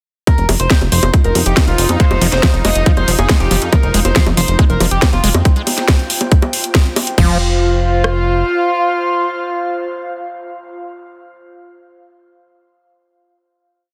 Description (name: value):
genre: psychedelic trance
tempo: 139 BPM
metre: 4/4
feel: straight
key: unclear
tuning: A4 = 440 Hz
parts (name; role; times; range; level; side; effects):
- overdriven synth lead; melody; 0.3-10.7 s; F4 to Eb5; -22 LUFS; equal; phaser, sidechain pumping, digital delay
- evolving wavetable pad; sustained chords; 1.0-5.5 s; Eb4; -29 LUFS; equal; phaser, built-in reverb, sidechain pumping
- drum and bass drum kit; drums; 0.3-8.1 s; kick drum, rim click; -14 LUFS; equal; overdrive, studio ambience
- drum and bass drum kit; drums; 0.3-7.3 s; bongos, crash cymbal, hi-hat, snare drum; -20 LUFS; equal; overdrive, studio ambience
- airy breathy pad; texture; 1.1-10.8 s; F4 to G5; -27 LUFS; equal; chorus, phaser, sidechain pumping
- plucky analog bass; bass; 0.4-8.4 s; F1 to F2; -18 LUFS; equal; none
- screaming distorted acid line; riff; 2.0-7.4 s; F3 to Ab3; -24 LUFS; equal; distortion, chorus, sidechain pumping, digital delay
room: light reverb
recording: dense, heavily limited modern master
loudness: -14 LUFS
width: mono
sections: 0.3-7.2 groove; 7.2-10.6 final chord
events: none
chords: 0.3 F5